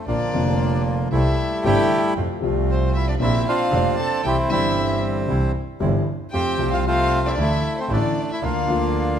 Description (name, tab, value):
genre	tango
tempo	115 BPM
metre	4/4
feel	rubato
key	F major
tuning	A4 = 443 Hz
part	bandoneon	melody	0.0-9.2 s	F3 to A4	-22 LUFS	right 1 dB	none
part	warm violin	second line	0.1-9.2 s	C5 to A5	-29 LUFS	left 5 dB	none
part	dark grand piano	accompaniment	0.1-9.2 s	F1 to F4	-25 LUFS	left 4 dB	none
part	bandoneon	stabs	0.1-9.2 s	G3 to F4	-33 LUFS	right 6 dB	none
part	clear double bass	bass	0.1-9.2 s	F1 to F2	-24 LUFS	right 2 dB	none
room	moderate scoring stage reverb, RT60 1.9 s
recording	minimal, uncompressed stereo recording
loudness	-18 LUFS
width	side -8 dB against mid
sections	0.0-9.2 A section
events	none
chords	0.1 Bb; 1.1 C6; 2.2 F; 3.2 Bbadd9; 4.2 C; 6.3 F; 7.4 Dsus2; 8.4 Bb/D